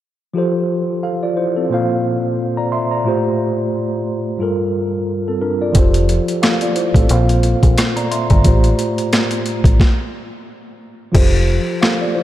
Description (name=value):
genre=hip hop, boom-bap hip-hop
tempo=89 BPM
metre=4/4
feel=swing 57% on 16ths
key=F major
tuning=A4 = 440 Hz
part: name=mellow tine electric piano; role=accompaniment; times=0.3-12.2 s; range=G2 to C6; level=-18 LUFS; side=equal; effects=medium stereo tremolo, cassette tape, high-pass filter, low-pass filter
part: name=boom bap sampler-style drum kit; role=drums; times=5.7-12.0 s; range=crash cymbal, hi-hat, kick drum, rim click, snare drum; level=-15 LUFS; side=equal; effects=overdrive
part: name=deep dub fingered electric bass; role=bass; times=5.8-11.6 s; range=F1 to Bb1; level=-15 LUFS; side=equal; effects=none
room=moderate church reverb, RT60 3.9 s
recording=dreamy mix soaked in reverb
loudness=-14 LUFS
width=side -13 dB against mid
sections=0.4-11.1 A section; 11.1-12.2 B section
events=stop 9.8-11.1; hi-hats muted 11.1-12.2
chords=0.4 Fadd9; 1.7 Bbsus2; 3.1 Fadd9/A; 4.4 Gm7; 5.8 Fadd9; 7.1 Bbsus2; 8.4 Fadd9/A; 9.8 N.C.; 11.1 Fadd9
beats=| 0.36 1.03 1.71 2.38 | 3.06 3.73 4.40 5.08 | 5.75 6.43 7.10 7.77 | 8.45 9.12 9.80 10.47 | 11.14 11.82